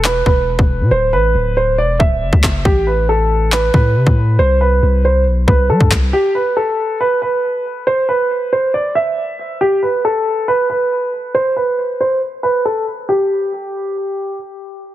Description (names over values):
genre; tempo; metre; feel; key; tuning
hip hop, drill; 138 BPM; 4/4; half-time; unclear; A4 = 440 Hz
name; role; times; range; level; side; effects
dark baby grand piano; melody; 0.0-14.4 s; G4 to E5; -15 LUFS; right 1 dB; low-pass filter, ping-pong delay
long sustained 808-style bass; bass; 0.0-6.1 s; D1 to G3; -15 LUFS; equal; none
drill drum kit; drums; 0.0-6.0 s; handclaps, kick drum; -14 LUFS; equal; none
room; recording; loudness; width
little or no reverb; heavily compressed radio sound; -13 LUFS; side -13 dB against mid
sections
0.0-13.1 A section; 13.1-14.9 B section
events
break 0.0-6.1; filter sweep on grand piano 0.0-13.1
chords
0.0 E5; 0.9 D; 2.7 N.C.; 4.4 C5; 6.1 N.C.